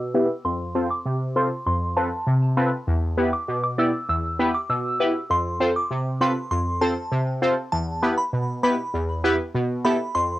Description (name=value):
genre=dancehall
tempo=99 BPM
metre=4/4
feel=straight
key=E phrygian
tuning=A4 = 440 Hz
part: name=glassy synth bell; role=melody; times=0.0-10.3 s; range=A5 to E6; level=-26 LUFS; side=right 1 dB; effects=chorus, low-pass filter
part: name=synth brass stab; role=accompaniment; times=0.0-10.4 s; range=E2 to D5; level=-22 LUFS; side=equal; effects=chorus, phaser, low-pass filter, cassette tape
room=moderate small room reverb, RT60 0.5 s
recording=home recording on cassette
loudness=-21 LUFS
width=side -16 dB against mid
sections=0.0-7.7 A section; 7.7-10.4 B section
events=filter sweep 0.0-7.7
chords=0.5 F; 2.9 Em; 5.3 F; 7.7 Em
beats=| 0.45 1.06 1.66 2.27 | 2.88 3.48 4.09 4.69 | 5.30 5.91 6.51 7.12 | 7.72 8.33 8.94 9.54 | 10.15